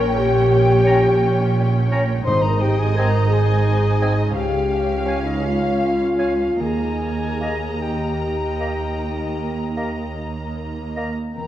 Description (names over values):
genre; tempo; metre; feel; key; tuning
classical, slow romantic movement for symphony orchestra; 49-59 BPM (dotted quarters); 12/8; rubato; unclear; A4 = 441 Hz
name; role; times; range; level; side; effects
muted symphonic violin section; melody; 0.0-11.5 s; Eb5 to Bb5; -31 LUFS; left 3 dB; none
muted symphonic violin section; second line; 0.0-11.5 s; C5 to G5; -33 LUFS; left 2 dB; none
muted symphonic viola section; accompaniment; 0.0-11.5 s; Bb3 to Eb4; -31 LUFS; right 2 dB; none
dark French horn section; sustained chords; 0.0-11.5 s; Eb4 to C5; -22 LUFS; left 2 dB; none
concert harp; arpeggios; 0.0-11.5 s; Ab2 to F5; -33 LUFS; left 5 dB; none
muted symphonic cello section; bass; 0.0-11.5 s; Db2 to Bb2; -25 LUFS; right 3 dB; none
muted symphonic double bass section; bass; 0.0-11.5 s; E1 to Eb2; -23 LUFS; right 3 dB; none
silver concert flute; second line; 0.1-11.5 s; Eb5 to C6; -30 LUFS; left 1 dB; none
clear clarinet; second line; 0.9-11.1 s; Db5 to F5; -32 LUFS; left 1 dB; none
clear oboe; second line; 0.9-11.1 s; Ab5 to Bb5; -34 LUFS; equal; none
clear bassoon; accompaniment; 0.9-11.1 s; Bb3 to Db4; -32 LUFS; right 2 dB; none
timpani; percussion; 2.3-3.3 s; Ab2; -26 LUFS; right 1 dB; none
room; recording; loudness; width
wet recital hall reverb, RT60 1.7 s; worn, warbling old tape, cassette tape, warbly pitch drift; -17 LUFS; side -12 dB against mid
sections
0.0-11.5 A section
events
none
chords
0.0 Gdim/Bb; 2.3 Ab; 4.4 Db; 6.6 Eb